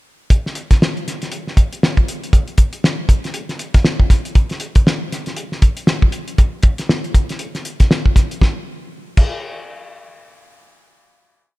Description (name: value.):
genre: funk.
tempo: 118 BPM.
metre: 4/4.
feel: swing 60% on 16ths.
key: none.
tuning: none.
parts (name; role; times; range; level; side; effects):
cloth-damped thuddy drum kit; drums; 0.3-9.3 s; crash cymbal, hi-hat, kick drum, snare drum; -14 LUFS; equal; none.
room: little or no reverb.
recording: none.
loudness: -14 LUFS.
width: side -19 dB against mid.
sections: 0.3-8.4 breakdown; 8.4-11.6 final hit.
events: none.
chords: none.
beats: | 0.30 0.81 1.32 1.82 | 2.33 2.84 3.35 3.85 | 4.36 4.87 5.37 5.88 | 6.39 6.89 7.40 7.91 | 8.41 8.92.